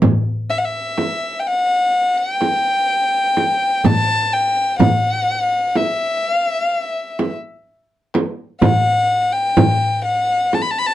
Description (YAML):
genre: Arabic maqam ensemble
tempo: 126 BPM (eighths)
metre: 10/8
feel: straight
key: E maqam bayati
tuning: A4 = 442 Hz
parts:
  - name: darbuka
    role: percussion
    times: 0.0-10.8 s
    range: none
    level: -22 LUFS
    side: left 2 dB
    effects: none
  - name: frame drum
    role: percussion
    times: 0.0-10.8 s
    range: none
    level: -16 LUFS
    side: right 2 dB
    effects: none
  - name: dark violin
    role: melody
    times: 0.5-10.9 s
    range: E5 to B5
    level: -17 LUFS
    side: left 2 dB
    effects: none
room: light reverb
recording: dark, warm production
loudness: -15 LUFS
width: side -13 dB against mid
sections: 0.0-10.9 A section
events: none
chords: none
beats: | 0.03 0.50 0.98 1.46 1.94 2.42 2.89 3.37 3.85 4.33 | 4.80 5.28 5.76 6.24 6.71 7.19 7.67 8.14 8.62 9.10 | 9.58 10.05 10.53